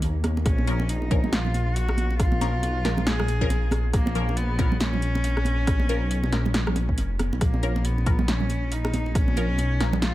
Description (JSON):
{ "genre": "deep dubstep", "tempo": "138 BPM", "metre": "4/4", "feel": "swing 59% on 16ths, half-time", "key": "Bb phrygian", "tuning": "A4 = 442 Hz", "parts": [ { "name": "dark detuned saw bass", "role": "bass", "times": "0.0-10.1 s", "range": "F1 to Eb2", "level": "-25 LUFS", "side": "equal", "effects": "none" }, { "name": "deep house drum kit", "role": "drums", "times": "0.0-10.1 s", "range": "hi-hat, rim click, snare drum", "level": "-29 LUFS", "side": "equal", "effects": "overdrive" }, { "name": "congas", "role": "percussion", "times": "0.0-10.0 s", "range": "none", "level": "-31 LUFS", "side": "right 3 dB", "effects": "none" }, { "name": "warm cello", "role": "melody", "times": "0.5-10.1 s", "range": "Bb3 to Ab4", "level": "-31 LUFS", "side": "left 1 dB", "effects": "dub echo" }, { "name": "electronic kick drum", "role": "drums", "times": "0.5-9.3 s", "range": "none", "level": "-24 LUFS", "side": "equal", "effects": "overdrive" }, { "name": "filtered dub chord stab", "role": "stabs", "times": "0.7-10.0 s", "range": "F3 to Bb4", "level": "-34 LUFS", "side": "left 2 dB", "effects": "phaser, dub echo" } ], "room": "little or no reverb", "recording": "faint mains hum", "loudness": "-21 LUFS", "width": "side -15 dB against mid", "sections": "0.0-10.1 A section", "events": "none", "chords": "0.0 Bbm", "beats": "0.02 | 0.46 0.89 1.33 1.76 | 2.20 2.63 3.07 3.50 | 3.94 4.37 4.80 5.24 | 5.67 6.11 6.54 6.98 | 7.41 7.85 8.28 8.72 | 9.15 9.59 10.02" }